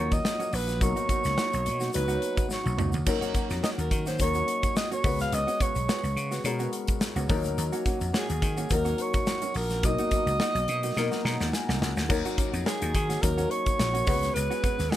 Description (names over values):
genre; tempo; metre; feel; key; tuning
polished 1980s jazz-funk pop; 106 BPM; 4/4; swing 54% on 16ths; Eb minor; A4 = 440 Hz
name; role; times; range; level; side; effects
breathy alto saxophone; melody; 0.0-15.0 s; Ab4 to F5; -30 LUFS; right 2 dB; none
dark grand piano; accompaniment; 0.0-15.0 s; F3 to A#5; -32 LUFS; left 4 dB; lush chorus
vintage slap bass; bass; 0.0-14.9 s; Bb1 to Eb3; -30 LUFS; equal; none
mellow electric guitar; riff; 0.1-15.0 s; Bb3 to Gb4; -36 LUFS; right 5 dB; wide subtle chorus
modern studio drum kit; drums; 0.1-15.0 s; crash cymbal, hi-hat, kick drum, snare drum, toms; -29 LUFS; equal; none
tube shaker; percussion; 0.1-15.0 s; none; -43 LUFS; left 4 dB; none
room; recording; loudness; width
little or no reverb; none; -24 LUFS; side -13 dB against mid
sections
0.0-12.1 A section; 12.1-15.0 A section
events
drum fill 2.5-3.1, 11.0-12.1; grand piano fill 11.0-12.1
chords
0.0 Ebm7; 0.8 Bmaj7; 3.1 Ebm7; 5.0 Db7sus4; 7.3 Ebm7; 9.8 Bmaj7; 12.1 Ebm7; 14.1 Db7sus4